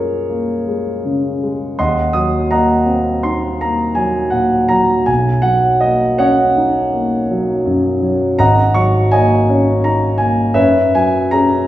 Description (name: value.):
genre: classical, impressionist solo piano.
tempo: 54 BPM (dotted quarters).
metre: 9/8.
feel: rubato.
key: unclear.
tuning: A4 = 440 Hz.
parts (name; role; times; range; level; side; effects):
warm concert grand piano; solo; 0.0-11.7 s; Ab1 to Eb6; -12 LUFS; equal; none.
room: wet recital hall reverb, RT60 1.5 s.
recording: heard from further back in the room, nothing above 10.5 kHz.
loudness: -12 LUFS.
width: side -14 dB against mid.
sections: 0.0-11.7 A section.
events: none.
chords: 0.0 Gbmaj9; 1.8 Ebm6; 5.1 Bmaj9; 8.4 Ab9sus4; 10.6 Gbsus24.